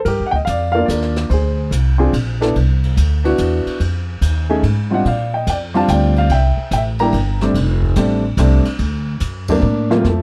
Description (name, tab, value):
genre	jazz piano trio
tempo	144 BPM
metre	3/4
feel	swing 67% on 8ths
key	G minor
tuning	A4 = 440 Hz
part	warm baby grand piano	melody	0.1-10.2 s	D2 to Bb5	-19 LUFS	equal	none
part	upright bass	bass	0.1-10.2 s	F1 to Bb2	-19 LUFS	equal	none
part	jazz brush drum kit	drums	0.1-10.2 s	brushed snare drum, crash cymbal, hi-hat, kick drum, ride cymbal, snare drum	-32 LUFS	equal	none
room	little or no reverb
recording	dry, close 1970s-style studio recording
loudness	-17 LUFS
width	mono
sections	0.1-10.0 A section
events	band accent 9.4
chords	0.1 Gm7; 1.3 Bb9; 2.6 Cmaj9#11; 3.8 Fm7; 5.1 Bb6; 6.3 C7; 7.6 F6; 8.8 D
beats	| 0.06 0.47 0.89 | 1.31 1.72 2.14 | 2.56 2.97 3.39 | 3.81 4.22 4.64 | 5.06 5.47 5.89 | 6.31 6.72 7.14 | 7.55 7.97 8.38 | 8.80 9.22 9.63 | 10.05